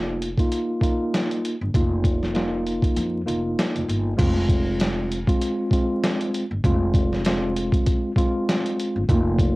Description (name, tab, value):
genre	hip hop, boom-bap hip-hop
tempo	98 BPM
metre	4/4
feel	swing 57% on 16ths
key	F minor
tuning	A4 = 440 Hz
part	mellow tine electric piano	accompaniment	0.0-9.6 s	Ab3 to F4	-24 LUFS	equal	medium stereo tremolo, high-pass filter, low-pass filter, cassette tape
part	upright bass	bass	0.0-9.6 s	F1 to F2	-26 LUFS	equal	none
part	boom bap sampler-style drum kit	drums	0.2-9.6 s	crash cymbal, hi-hat, kick drum, snare drum	-22 LUFS	equal	cassette tape
room	little or no reverb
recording	home recording on cassette, vinyl crackle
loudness	-20 LUFS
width	side -21 dB against mid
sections	0.0-4.2 A section; 4.2-9.6 B section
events	break 3.0-4.2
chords	0.0 Bbsus4/F; 4.2 Fm